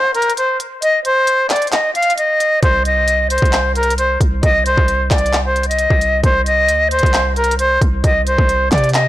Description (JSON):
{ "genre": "hip hop, trap", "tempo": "133 BPM", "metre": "4/4", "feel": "half-time", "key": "C minor", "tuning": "A4 = 440 Hz", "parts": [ { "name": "silver concert flute", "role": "melody", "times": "0.0-9.1 s", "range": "Bb4 to F5", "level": "-14 LUFS", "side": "equal", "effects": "low-pass filter" }, { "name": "trap drum kit", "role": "drums", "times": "0.1-9.1 s", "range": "handclaps, hi-hat, kick drum", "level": "-19 LUFS", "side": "equal", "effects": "none" }, { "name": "warm 808-style bass", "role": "bass", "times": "2.6-9.1 s", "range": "C2 to C3", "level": "-18 LUFS", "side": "equal", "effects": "none" } ], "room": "little or no reverb", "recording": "blown-out, overdriven recording, overdrive", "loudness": "-12 LUFS", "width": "side -14 dB against mid", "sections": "0.0-9.1 A section", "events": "break 0.0-2.6", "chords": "0.0 N.C.; 2.6 Cm" }